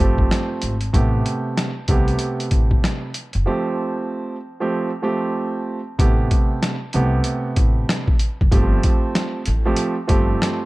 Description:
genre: hip hop, boom-bap hip-hop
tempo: 95 BPM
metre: 4/4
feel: swing 62% on 16ths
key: A minor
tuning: A4 = 440 Hz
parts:
  - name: dark baby grand piano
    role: accompaniment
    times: 0.0-10.7 s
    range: C3 to G4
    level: -22 LUFS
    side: right 2 dB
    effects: cassette tape, high-pass filter, low-pass filter
  - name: upright bass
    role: bass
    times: 0.0-10.3 s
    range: F#1 to C2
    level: -22 LUFS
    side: equal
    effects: none
  - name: boom bap sampler-style drum kit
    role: drums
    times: 0.2-10.6 s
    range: hi-hat, kick drum, snare drum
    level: -19 LUFS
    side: equal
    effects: none
room: light reverb, small room ambience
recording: dark, warm production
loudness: -18 LUFS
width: side -20 dB against mid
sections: 0.0-6.0 A section; 6.0-10.7 B section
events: break 3.5-6.0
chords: 0.0 G9sus4; 0.9 Am9; 3.5 G9sus4; 6.0 Am9; 8.5 G9sus4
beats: 0.31 | 0.94 1.57 2.20 2.83 | 3.46 4.10 4.73 5.36 | 5.99 6.62 7.25 7.89 | 8.52 9.15 9.78 10.41

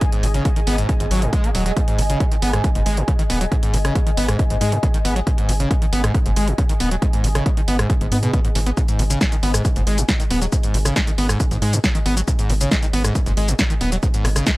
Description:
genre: driving peak-time techno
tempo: 137 BPM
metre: 4/4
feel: straight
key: G# minor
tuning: A4 = 441 Hz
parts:
  - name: screaming distorted acid line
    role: riff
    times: 0.0-14.5 s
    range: G#2 to B3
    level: -23 LUFS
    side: equal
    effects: distortion, lush chorus, sidechain pumping, analog delay
  - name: electronic kick drum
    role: drums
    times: 0.0-14.6 s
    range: none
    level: -19 LUFS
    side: equal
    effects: none
  - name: techno drum kit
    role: drums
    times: 0.0-14.6 s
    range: hi-hat, rim click, shaker, snare drum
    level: -24 LUFS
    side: equal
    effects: none
  - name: ethereal airy pad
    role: texture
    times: 0.0-14.6 s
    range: G#4 to G#5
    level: -30 LUFS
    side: left 1 dB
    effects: ensemble chorus, built-in reverb, phaser, sidechain pumping
  - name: tight sequencer bass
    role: bass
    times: 0.2-14.4 s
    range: D#1 to G#2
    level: -21 LUFS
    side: equal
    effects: sidechain pumping
room: little or no reverb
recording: dry, gritty hardware recording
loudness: -16 LUFS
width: side -20 dB against mid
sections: 0.0-14.6 A section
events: none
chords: 0.0 G#5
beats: | 0.01 0.45 0.89 1.33 | 1.77 2.20 2.64 3.08 | 3.52 3.96 4.39 4.83 | 5.27 5.71 6.14 6.58 | 7.02 7.46 7.90 8.34 | 8.77 9.21 9.65 10.09 | 10.53 10.96 11.40 11.84 | 12.28 12.71 13.15 13.59 | 14.03 14.47

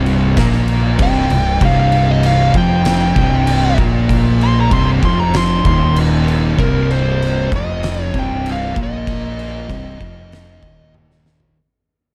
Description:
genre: stoner and doom metal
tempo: 97 BPM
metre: 4/4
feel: straight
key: C minor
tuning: A4 = 441 Hz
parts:
  - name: thick fuzz guitar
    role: riff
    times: 0.0-11.5 s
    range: C2 to Bb3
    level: -21 LUFS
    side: equal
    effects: distortion
  - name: thick fuzz guitar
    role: riff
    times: 0.0-11.5 s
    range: C2 to Bb3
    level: -21 LUFS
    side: equal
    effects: distortion
  - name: fuzz fingered electric bass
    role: bass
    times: 0.0-11.5 s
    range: C1 to Bb1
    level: -22 LUFS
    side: equal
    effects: overdrive
  - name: oversized low-tuned drum kit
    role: drums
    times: 0.1-11.5 s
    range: crash cymbal, kick drum, snare drum, toms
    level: -22 LUFS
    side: equal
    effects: none
  - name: fuzz lead guitar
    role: melody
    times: 1.0-10.9 s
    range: Bb4 to C6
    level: -23 LUFS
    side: equal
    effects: distortion, tape echo
room: little or no reverb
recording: dark, warm production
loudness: -15 LUFS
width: mono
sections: 0.0-6.6 A section; 6.6-11.6 B section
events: lead electric guitar solo 0.0-6.6; fade-out 6.6-11.6; drum fill 10.9-11.6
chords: 0.0 Cm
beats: 0.37 0.99 | 1.61 2.23 2.85 3.47 | 4.09 4.71 5.33 5.96 | 6.58 7.20 7.82 8.44 | 9.06 9.69 10.31 10.93

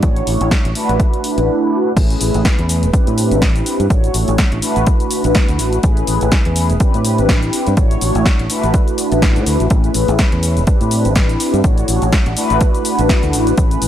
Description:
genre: filtered disco house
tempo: 124 BPM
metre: 4/4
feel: swing 57% on 16ths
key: A major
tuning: A4 = 440 Hz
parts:
  - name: mellow synth brass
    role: accompaniment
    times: 0.0-13.9 s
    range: A3 to C#5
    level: -18 LUFS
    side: equal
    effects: chorus, phaser, cassette tape, sidechain pumping, low-pass filter
  - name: fingered electric bass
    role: bass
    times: 0.0-13.9 s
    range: E1 to A2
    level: -17 LUFS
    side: equal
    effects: transformer saturation, sidechain pumping, low-pass filter
  - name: electronic kick drum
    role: drums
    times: 0.0-13.7 s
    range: none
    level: -14 LUFS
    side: equal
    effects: overdrive
  - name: punchy analog drum machine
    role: drums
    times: 0.0-13.9 s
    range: cabasa, crash cymbal, hi-hat, snare drum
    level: -22 LUFS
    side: left 1 dB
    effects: overdrive, sidechain pumping on hats, sidechain pumping on cymbals, sidechain pumping on perc
room: little or no reverb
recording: dry, gritty hardware recording, transformer saturation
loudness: -12 LUFS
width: side -11 dB against mid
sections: 0.0-2.0 A section; 2.0-13.9 B section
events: filter sweep 0.0-2.0; drop 2.0-13.9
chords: 0.0 Dmaj7/A; 0.8 E7sus4/A; 2.0 Amaj7; 2.9 Cmaj7/A; 3.9 Dmaj7/A; 4.6 E7sus4/A; 5.8 Amaj7; 6.8 Cmaj7/A; 7.8 Dmaj7/A; 8.5 E7sus4/A; 9.7 Amaj7; 10.7 Cmaj7/A; 11.6 Dmaj7/A; 12.4 E7sus4/A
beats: | 0.03 0.51 1.00 1.48 | 1.97 2.45 2.93 3.42 | 3.90 4.38 4.87 5.35 | 5.84 6.32 6.80 7.29 | 7.77 8.26 8.74 9.22 | 9.71 10.19 10.68 11.16 | 11.64 12.13 12.61 13.09 | 13.58

